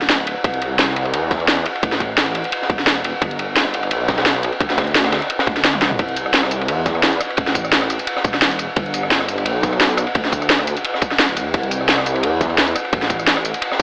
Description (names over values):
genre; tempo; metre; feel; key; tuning
liquid drum and bass; 173 BPM; 4/4; swing 54% on 16ths; C major; A4 = 441 Hz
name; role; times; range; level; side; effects
swelling detuned saw bass; bass; 0.0-13.8 s; D1 to E2; -26 LUFS; equal; tube saturation
garage drum kit; drums; 0.0-13.8 s; hi-hat, rim click, snare drum, tambourine, toms; -21 LUFS; equal; overdrive
crunchy breakbeat drum kit; drums; 0.1-13.8 s; ride cymbal, snare drum; -24 LUFS; equal; high-pass filter on cymbals, high-pass filter on snare, high-pass filter on room
electronic kick drum; drums; 0.4-13.8 s; none; -23 LUFS; equal; overdrive
room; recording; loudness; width
light reverb, small room ambience; AM radio sound; -18 LUFS; mono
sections
0.0-13.8 A section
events
drum fill 5.7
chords
none